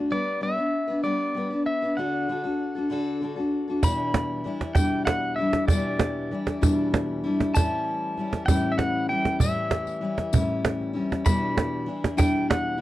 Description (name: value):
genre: acoustic folk duo or small band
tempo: 65 BPM (dotted quarters)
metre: 6/8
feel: straight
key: unclear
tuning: A4 = 435 Hz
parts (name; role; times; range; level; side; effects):
- picked steel-string acoustic guitar; accompaniment; 0.0-12.8 s; E2 to D5; -26 LUFS; left 2 dB; none
- pedal steel guitar; melody; 0.1-12.8 s; D5 to B5; -28 LUFS; equal; none
- cajon; percussion; 3.8-12.6 s; none; -23 LUFS; right 2 dB; none
- tambourine; percussion; 3.8-12.3 s; none; -38 LUFS; left 12 dB; none
room: small room ambience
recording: dry, close 1970s-style studio recording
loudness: -23 LUFS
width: side -15 dB against mid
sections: 0.0-3.8 A section; 3.8-12.8 B section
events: none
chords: 0.1 G; 2.0 D; 3.8 Em7; 7.6 A7; 11.3 Em7